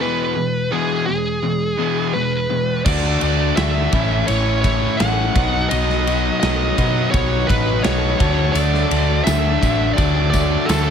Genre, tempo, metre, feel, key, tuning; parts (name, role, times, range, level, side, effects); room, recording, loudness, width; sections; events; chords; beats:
classic rock; 84 BPM; 4/4; straight; A4 = 440 Hz
bluesy overdriven lead guitar; melody; 0.0-10.9 s; G#4 to F#5; -22 LUFS; equal; distortion
distorted electric guitar; riff; 0.0-10.9 s; A2 to F#4; -24 LUFS; right 14 dB; distortion
overdriven semi-hollow guitar; riff; 0.0-10.9 s; E2 to F#4; -23 LUFS; left 12 dB
overdriven tonewheel organ; sustained chords; 2.5-10.9 s; F#3 to F5; -33 LUFS; right 1 dB
hollow-body short-scale picked electric bass; bass; 2.9-10.9 s; A1 to B2; -20 LUFS; equal
big rock drum kit; drums; 2.9-10.9 s; crash cymbal, kick drum, ride cymbal, snare drum; -22 LUFS; equal
tambourine; percussion; 8.6-10.9 s; -36 LUFS; left 8 dB
studio reverb; -16 LUFS; side -7 dB against mid
0.0-2.9 A section; 2.9-10.9 B section
break 0.0-2.9
0.0 E; 2.9 D; 3.9 A; 5.4 B; 8.2 D
| 0.01 0.72 1.44 2.15 | 2.87 3.58 4.29 5.00 | 5.71 6.43 7.14 7.85 | 8.56 9.27 9.98 10.70